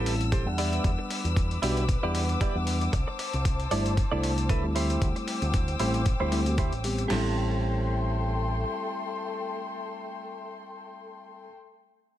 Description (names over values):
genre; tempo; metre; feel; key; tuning
nu-disco, nu disco; 115 BPM; 4/4; swing 55% on 16ths; A dorian; A4 = 444 Hz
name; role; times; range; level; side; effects
mellow reed electric piano; accompaniment; 0.0-11.5 s; G3 to F#5; -32 LUFS; equal; sidechain pumping, low-pass filter, dub echo
muted studio string section; sustained chords; 0.0-11.5 s; A3 to E6; -34 LUFS; left 4 dB; sidechain pumping
direct-recorded clean electric guitar; riff; 0.0-11.5 s; E4 to D5; -34 LUFS; right 4 dB; wide subtle chorus, low-pass filter, dub echo
picked electric bass with an envelope filter; bass; 0.0-8.6 s; G1 to E2; -29 LUFS; equal; none
electronic hi-hat; drums; 0.1-7.1 s; none; -37 LUFS; left 2 dB; overdrive
dusty soul sampler-style drum kit; drums; 0.3-7.2 s; crash cymbal, kick drum, snare drum; -28 LUFS; equal; overdrive
room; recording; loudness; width
little or no reverb; none; -25 LUFS; side -12 dB against mid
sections
0.0-7.1 A section; 7.1-11.3 B section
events
filter sweep on reed electric piano 0.0-7.1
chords
0.0 Am7; 0.6 Em7; 2.9 C69; 4.8 D9sus4; 7.1 Am7